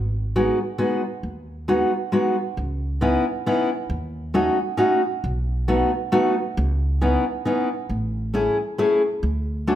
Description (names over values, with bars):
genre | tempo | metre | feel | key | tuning
musette waltz | 135 BPM | 3/4 | straight | C# minor | A4 = 440 Hz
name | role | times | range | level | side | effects
upright bass | bass | 0.0-9.8 s | G#1 to D#2 | -24 LUFS | right 1 dB | none
fingerpicked steel-string acoustic guitar | accompaniment | 0.4-9.8 s | G#3 to G#4 | -20 LUFS | equal | none
room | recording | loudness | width
moderate recital hall reverb, RT60 1.4 s | none | -20 LUFS | side -11 dB against mid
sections
0.0-2.6 A section; 2.6-9.8 B section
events
none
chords
0.0 G#m7; 2.6 C#m9; 3.9 D#m7b5; 5.2 B7; 6.6 C#m9; 7.9 Amaj7; 9.2 Dmaj7